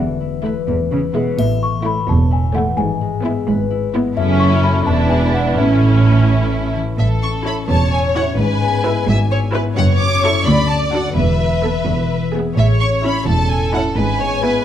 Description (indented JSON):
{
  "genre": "cinematic, playful, whimsical film cue",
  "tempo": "86 BPM (dotted quarters)",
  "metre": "6/8",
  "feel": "straight",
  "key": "A major",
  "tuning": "A4 = 440 Hz",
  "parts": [
    { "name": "celesta", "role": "melody", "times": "0.0-6.7 s", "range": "E5 to C#6", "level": "-24 LUFS", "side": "left 4 dB", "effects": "none" },
    { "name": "concert harp", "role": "arpeggios", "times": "0.0-14.6 s", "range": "E2 to C#5", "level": "-21 LUFS", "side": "left 7 dB", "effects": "none" },
    { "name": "rich studio cello section", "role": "bass", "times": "0.0-14.5 s", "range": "D2 to C#3", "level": "-21 LUFS", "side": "right 2 dB", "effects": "none" },
    { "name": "rich studio double bass section", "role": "bass", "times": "0.0-14.5 s", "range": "E1 to D2", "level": "-19 LUFS", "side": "right 2 dB", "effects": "none" },
    { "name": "rich studio violin section", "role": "melody", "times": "0.4-14.6 s", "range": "A4 to D6", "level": "-24 LUFS", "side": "left 1 dB", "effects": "none" },
    { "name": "rich studio violin section", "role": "second line", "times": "0.4-14.6 s", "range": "E4 to E5", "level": "-22 LUFS", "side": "equal", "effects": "none" },
    { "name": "rich studio viola section", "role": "accompaniment", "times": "0.4-14.6 s", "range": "G#3 to C#5", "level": "-22 LUFS", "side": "right 2 dB", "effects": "none" },
    { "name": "triangle", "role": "percussion", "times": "1.4-2.3 s", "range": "none", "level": "-42 LUFS", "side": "equal", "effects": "none" }
  ],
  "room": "moderate recital hall reverb, RT60 1.5 s",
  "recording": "none",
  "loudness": "-14 LUFS",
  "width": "side -10 dB against mid",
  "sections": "0.0-7.0 A section; 7.0-14.6 A section",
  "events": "none",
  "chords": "0.0 Esus4; 0.7 E; 1.4 A; 2.8 E/G#; 4.2 F#m7; 4.9 E5; 5.6 A; 8.4 E/G#; 9.8 F#m7; 10.5 D; 11.2 Esus4; 11.9 E; 12.6 A; 14.0 E/G#",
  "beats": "0.68 | 1.39 2.08 | 2.78 3.48 | 4.17 4.87 | 5.57 6.28 | 6.99 7.69 | 8.38 9.08 | 9.77 10.46 | 11.16 11.87 | 12.57 13.27 | 13.97"
}